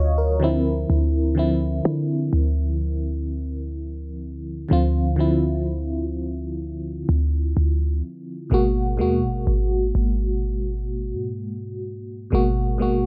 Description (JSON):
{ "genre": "contemporary R&B", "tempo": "63 BPM", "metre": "4/4", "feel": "straight", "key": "unclear", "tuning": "A4 = 440 Hz", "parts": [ { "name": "FM electric piano with tremolo", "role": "accompaniment", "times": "0.0-13.1 s", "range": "Cb3 to F5", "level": "-27 LUFS", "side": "equal", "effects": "phaser" }, { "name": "clean 808-style bass", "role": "bass", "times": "0.0-13.1 s", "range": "Ab1 to D3", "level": "-25 LUFS", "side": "equal", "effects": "none" } ], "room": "light reverb", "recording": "none", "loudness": "-23 LUFS", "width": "mono", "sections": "0.0-13.1 A section", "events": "none", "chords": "0.4 Dm9; 8.5 Abm9", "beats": "| 0.90 1.85 2.80 3.75 | 4.71 5.66 6.61 7.56 | 8.52 9.47 10.42 11.37 | 12.32" }